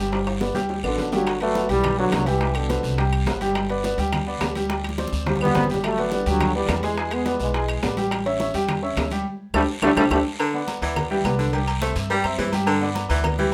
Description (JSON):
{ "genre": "latin, salsa", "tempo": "210 BPM", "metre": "4/4", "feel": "straight", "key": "G major", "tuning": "A4 = 440 Hz", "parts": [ { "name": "clear upright piano", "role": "accompaniment", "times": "0.0-13.5 s", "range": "G3 to Ab5", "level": "-27 LUFS", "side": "equal", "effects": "none" }, { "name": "upright bass", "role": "bass", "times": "0.0-13.5 s", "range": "G1 to G2", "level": "-30 LUFS", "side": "equal", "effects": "none" }, { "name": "bongos and cowbell", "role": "percussion", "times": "0.1-13.4 s", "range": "none", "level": "-34 LUFS", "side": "equal", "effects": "none" }, { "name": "congas", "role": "percussion", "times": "0.1-13.5 s", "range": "none", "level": "-34 LUFS", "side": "equal", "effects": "none" }, { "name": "guiro", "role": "percussion", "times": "0.1-13.5 s", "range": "none", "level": "-40 LUFS", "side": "equal", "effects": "none" }, { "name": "timbales and agogo bells", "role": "percussion", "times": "0.1-13.4 s", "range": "none", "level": "-34 LUFS", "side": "equal", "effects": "none" }, { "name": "claves", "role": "percussion", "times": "0.3-13.4 s", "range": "none", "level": "-37 LUFS", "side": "equal", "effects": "none" }, { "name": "warm trombone section", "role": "melody", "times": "0.8-3.0, 5.4-10.2 s", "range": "B2 to B3", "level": "-26 LUFS", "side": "equal", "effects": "none" }, { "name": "clear baritone saxophone", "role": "second line", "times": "10.4-13.5 s", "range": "D3 to A3", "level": "-28 LUFS", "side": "equal", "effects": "none" } ], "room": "moderate studio reverb, RT60 0.6 s", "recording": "none", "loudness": "-23 LUFS", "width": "mono", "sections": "0.0-1.3 A section; 1.3-10.4 B section; 10.4-13.5 C section", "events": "drum fill 0.1-1.3, 4.7-5.8, 9.5-10.4; band accent 9.3-10.4", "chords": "0.1 G; 1.3 Gmaj7; 2.4 Csus2; 3.6 G; 4.7 D7sus4; 5.8 Gmaj7; 7.0 E7; 8.1 A7; 9.3 Dsus4; 10.4 G; 11.5 C; 12.7 G" }